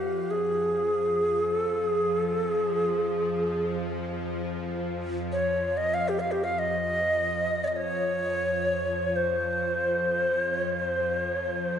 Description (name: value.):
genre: world meditative, free-time meditation music.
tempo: free time.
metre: none.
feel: none.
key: F minor.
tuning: A4 = 440 Hz.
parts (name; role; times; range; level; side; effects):
breathy reedy Native American-style cedar flute; melody; 0.0-11.8 s; G4 to F5; -26 LUFS; equal; shimmer reverb, analog delay.
bowed-like drone; drone; 0.0-11.8 s; F2 to F3; -32 LUFS; left 2 dB; built-in reverb.
resonant blip pluck; texture; 0.0-5.6 s; none; barely audible; none; none.
room: wet echo chamber reverb, RT60 1.4 s, studio reverb.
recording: echo-heavy mix, nothing above 10.8 kHz.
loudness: -25 LUFS.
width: side -8 dB against mid.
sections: 0.0-11.8 A section.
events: none.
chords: none.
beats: free time.